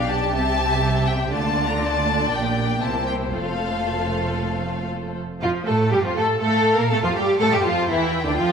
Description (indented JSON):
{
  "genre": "quick classical-period movement for string orchestra",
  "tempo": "119 BPM",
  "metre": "4/4",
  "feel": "uneven beats, rubato",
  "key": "F major",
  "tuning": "A4 = 440 Hz",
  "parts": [
    { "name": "warm symphonic violin section", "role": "melody", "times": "0.0-8.5 s", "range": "F5 to Bb5", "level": "-27 LUFS", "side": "left 3 dB", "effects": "none" },
    { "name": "rich symphonic violin section", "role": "second line", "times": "0.0-8.5 s", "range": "D4 to E5", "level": "-25 LUFS", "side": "left 3 dB", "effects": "none" },
    { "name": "rich symphonic viola section", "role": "accompaniment", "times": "0.0-8.5 s", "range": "D3 to G4", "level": "-25 LUFS", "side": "right 1 dB", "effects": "none" },
    { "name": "rich symphonic cello section", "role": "bass", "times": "0.0-8.5 s", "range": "F2 to Bb4", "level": "-25 LUFS", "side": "right 2 dB", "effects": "none" },
    { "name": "rich symphonic double bass section", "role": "bass", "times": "0.0-8.5 s", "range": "F1 to Bb2", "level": "-27 LUFS", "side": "right 4 dB", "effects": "none" }
  ],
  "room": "moderate scoring stage reverb, RT60 1.9 s",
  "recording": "minimal, uncompressed stereo recording",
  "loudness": "-19 LUFS",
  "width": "side -6 dB against mid",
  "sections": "0.0-5.4 A section; 5.4-8.5 B section",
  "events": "none",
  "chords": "0.3 C; 1.3 Dm; 2.3 Gm/Bb; 2.8 C7; 3.3 F; 7.4 Dm",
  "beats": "0.35 0.83 | 1.33 1.82 2.31 2.82 | 3.34 3.87 4.38 4.91 | 5.43 5.92 6.41 6.91 | 7.40 7.89 8.39"
}